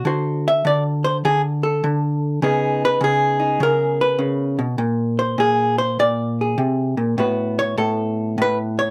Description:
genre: solo jazz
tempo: 101 BPM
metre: 4/4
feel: swing 67% on 8ths, rubato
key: unclear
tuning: A4 = 440 Hz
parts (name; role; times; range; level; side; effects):
- vintage hollow-body jazz guitar; solo; 0.0-8.9 s; A2 to E5; -20 LUFS; equal; none
room: light reverb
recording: none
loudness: -20 LUFS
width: mono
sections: 0.0-8.9 A section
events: none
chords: 0.1 D7; 2.4 C#sus2; 4.8 A#9; 7.2 A69

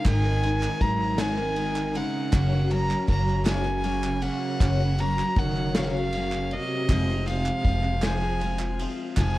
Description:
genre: indie folk with a building arrangement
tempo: 53 BPM (dotted quarters)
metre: 6/8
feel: straight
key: unclear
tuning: A4 = 441 Hz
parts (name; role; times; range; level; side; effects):
- clear fiddle; melody; 0.0-9.4 s; Eb5 to Bb5; -30 LUFS; equal; digital delay
- dark cello; second line; 0.0-9.4 s; C3 to Gb3; -31 LUFS; right 4 dB; digital delay
- picked twelve-string acoustic guitar; accompaniment; 0.0-9.4 s; F2 to Bb4; -31 LUFS; left 4 dB; none
- upright bass; bass; 0.1-9.4 s; F1 to Ab1; -27 LUFS; equal; none
- unplugged drum kit; drums; 0.1-9.3 s; kick drum, ride cymbal, snare drum; -30 LUFS; equal; none
- group handclap; percussion; 0.1-9.4 s; none; -39 LUFS; right 4 dB; none
room: studio reverb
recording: worn, warbling old tape, cassette tape, warbly pitch drift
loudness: -23 LUFS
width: side -17 dB against mid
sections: 0.0-9.4 A section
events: none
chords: 0.0 Abadd9; 2.3 Gb; 6.9 Fm

